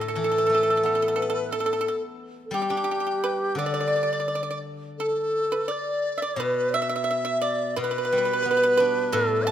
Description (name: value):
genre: chinese traditional, Chinese chamber ensemble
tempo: 87 BPM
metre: 4/4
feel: rubato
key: D zhi mode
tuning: A4 = 440 Hz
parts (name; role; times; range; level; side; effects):
- bright xiao; melody; 0.0-9.5 s; G4 to A5; -25 LUFS; right 2 dB; none
- mellow hollow dizi; second line; 0.0-9.5 s; A4 to G5; -29 LUFS; left 6 dB; none
- pipa; second line; 0.0-9.5 s; G4 to A5; -30 LUFS; right 5 dB; none
- steel-string zither; accompaniment; 0.0-9.5 s; A2 to D4; -31 LUFS; left 3 dB; none
room: light reverb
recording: close, detailed microphones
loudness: -22 LUFS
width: side -10 dB against mid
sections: 0.0-5.0 A section; 5.0-9.5 B section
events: none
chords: none